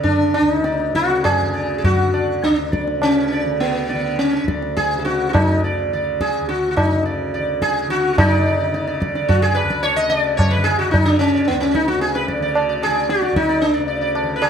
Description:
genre	indian classical, Hindustani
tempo	100-114 BPM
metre	4/4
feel	straight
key	D raga marwa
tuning	A4 = 440 Hz
part	sitar	melody	0.0-14.5 s	B3 to Eb5	-18 LUFS	equal	slapback echo
part	tanpura	drone	0.0-14.5 s	D2 to D3	-26 LUFS	left 1 dB	none
part	tabla	percussion	0.0-14.5 s	none	-20 LUFS	equal	none
room	moderate recital hall reverb, RT60 1.6 s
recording	close, detailed microphones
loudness	-16 LUFS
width	side -8 dB against mid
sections	0.0-8.2 A section; 8.2-14.5 B section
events	speeding up 0.0-14.5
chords	none

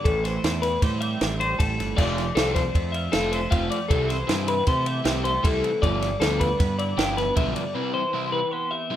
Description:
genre	math rock and midwest emo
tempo	156 BPM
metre	5/4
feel	straight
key	C major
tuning	A4 = 435 Hz
part	twelve-string electric guitar	accompaniment	0.0-9.0 s	F2 to G4	-32 LUFS	right 7 dB	analog chorus
part	twelve-string electric guitar	arpeggios	0.0-9.0 s	G4 to F5	-26 LUFS	left 3 dB	none
part	growling fingered electric bass	bass	0.1-7.5 s	F1 to C3	-28 LUFS	right 1 dB	overdrive
part	compact cocktail drum kit	drums	0.1-7.7 s	crash cymbal, kick drum, ride cymbal, snare drum	-26 LUFS	right 1 dB	none
part	crunchy overdriven guitar	riff	2.0-9.0 s	C3 to F4	-30 LUFS	equal	spring reverb
room	moderate digital room reverb, RT60 1.0 s, studio reverb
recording	rough home demo mix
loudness	-21 LUFS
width	side -11 dB against mid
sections	0.0-9.0 A section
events	break 7.8-9.0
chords	0.1 Am7; 2.0 F6; 3.9 C6; 5.8 G7; 7.8 Cmaj7

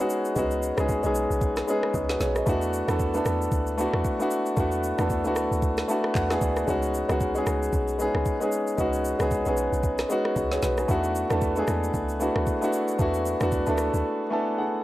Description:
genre	amapiano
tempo	114 BPM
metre	4/4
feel	swing 58% on 16ths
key	unclear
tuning	A4 = 442 Hz
part	warm concert grand piano	accompaniment	0.0-14.8 s	G#3 to A5	-24 LUFS	equal	none
part	smooth R&B drum kit	drums	0.1-14.0 s	handclaps, kick drum, rim click, shaker, snare drum	-30 LUFS	equal	none
part	deep log drum bass	bass	0.4-14.0 s	B1 to E2	-30 LUFS	equal	none
room	digital ambience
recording	dry, gritty hardware recording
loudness	-23 LUFS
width	side -16 dB against mid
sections	0.0-14.8 A section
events	grand piano fill 5.6-6.7, 14.0-14.8; break 14.0-14.8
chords	0.0 C#9sus4; 2.5 E9sus4; 6.7 C#9sus4; 10.9 E9sus4

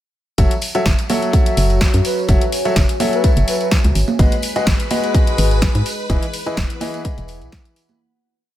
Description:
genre	piano house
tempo	126 BPM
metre	4/4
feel	swing 54% on 16ths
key	F# dorian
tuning	A4 = 440 Hz
part	clear concert grand piano	riff	0.4-8.0 s	E3 to E5	-22 LUFS	left 1 dB	sidechain pumping
part	organ-like FM bass	bass	0.4-7.5 s	E1 to G#2	-17 LUFS	equal	tube saturation, sidechain pumping
part	electronic kick drum	drums	0.4-7.6 s	none	-16 LUFS	equal	studio reverb
part	house drum kit	drums	0.4-7.9 s	hi-hat, snare drum	-24 LUFS	left 1 dB	studio reverb
part	tambourine and congas	percussion	0.4-8.0 s	none	-27 LUFS	right 6 dB	none
part	deep dark ambient pad	texture	1.6-8.0 s	E4 to G#5	-27 LUFS	left 2 dB	chorus, built-in reverb, sidechain pumping
part	breathy flute-like synth lead	melody	1.5-3.7 s	B4 to E5	-26 LUFS	left 1 dB	wide subtle chorus, ping-pong delay
part	string machine, violins	sustained chords	4.2-8.0 s	B4 to B5	-28 LUFS	left 1 dB	ensemble chorus, sidechain pumping
room	little or no reverb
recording	none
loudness	-14 LUFS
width	side -13 dB against mid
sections	0.4-8.0 groove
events	fade-out 5.5-8.0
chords	0.4 F#m7; 4.0 G#m7; 5.9 Emaj7

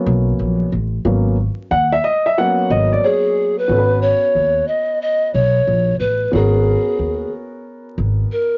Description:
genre	hip hop, jazz-hop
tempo	91 BPM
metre	4/4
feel	swing 65% on 16ths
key	G# minor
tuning	A4 = 440 Hz
part	dark upright piano	accompaniment	0.0-8.6 s	F#3 to F#5	-22 LUFS	equal	cassette tape, plate reverb
part	upright bass	bass	0.1-8.2 s	G#1 to D#2	-21 LUFS	equal	none
part	mellow hollow polished pan flute	melody	3.0-8.6 s	G#4 to D#5	-19 LUFS	equal	cassette tape, plate reverb
room	light reverb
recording	home recording on cassette, vinyl crackle, nothing above 7.5 kHz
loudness	-17 LUFS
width	mono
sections	0.0-3.7 A section; 3.7-8.6 B section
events	upright piano solo 0.0-3.7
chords	0.0 G#m11

